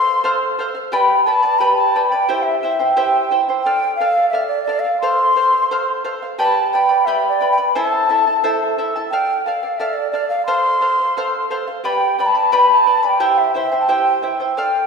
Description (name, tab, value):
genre	andean folk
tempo	88 BPM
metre	2/4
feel	straight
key	unclear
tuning	A4 = 440 Hz
part	mellow large quena	melody	0.0-14.9 s	D5 to C6	-17 LUFS	equal	none
part	charango	accompaniment	0.0-14.9 s	E4 to B5	-18 LUFS	equal	none
room	wet scoring stage reverb, RT60 1.6 s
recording	recorded in a church or concert hall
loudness	-14 LUFS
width	side -5 dB against mid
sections	0.0-9.1 A section; 9.1-14.9 A section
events	none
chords	0.0 F; 0.9 G; 2.3 C; 3.7 Dm; 5.0 F; 6.4 G; 7.7 Am; 9.1 Dm; 10.5 F; 11.8 G; 13.2 C